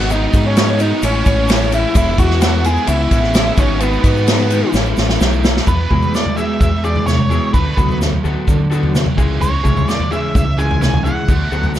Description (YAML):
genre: indie rock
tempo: 129 BPM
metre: 4/4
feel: straight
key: E mixolydian from 5.7 s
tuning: A4 = 442 Hz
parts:
  - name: octave-fuzz lead guitar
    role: melody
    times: 0.0-11.7 s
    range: B3 to G#5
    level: -20 LUFS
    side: right 2 dB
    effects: distortion, plate reverb, analog delay
  - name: electric guitar through a small old amp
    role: riff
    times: 0.0-11.8 s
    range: G#2 to A4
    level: -22 LUFS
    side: left 6 dB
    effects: wide subtle chorus
  - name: scooped high-gain guitar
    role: riff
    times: 0.0-11.8 s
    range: G#2 to E4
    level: -23 LUFS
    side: right 6 dB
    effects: distortion, ensemble chorus
  - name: growling fingered electric bass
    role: bass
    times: 0.0-11.8 s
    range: E1 to D3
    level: -18 LUFS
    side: equal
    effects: overdrive
  - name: unplugged drum kit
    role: drums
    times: 0.0-11.8 s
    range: kick drum, ride cymbal, snare drum, toms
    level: -17 LUFS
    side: equal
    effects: none
  - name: egg shaker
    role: percussion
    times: 0.1-11.8 s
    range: none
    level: -37 LUFS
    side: left 9 dB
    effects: none
room: light reverb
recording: dark, warm production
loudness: -12 LUFS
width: side -12 dB against mid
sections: 0.0-5.7 A section; 5.7-11.8 B section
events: drum fill 4.7-5.7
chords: 0.0 G#m7; 1.0 Amaj7; 2.0 E; 2.9 C#m7; 3.6 G#m7; 4.7 Amaj7; 5.2 B7sus4; 5.7 Eadd9; 7.5 D6; 9.2 C#m; 11.3 D6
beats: | 0.10 0.56 1.03 1.49 | 1.96 2.42 2.88 3.35 | 3.81 4.27 4.74 5.20 | 5.67 6.14 6.60 7.07 | 7.54 8.01 8.48 8.95 | 9.41 9.88 10.35 10.82 | 11.29 11.75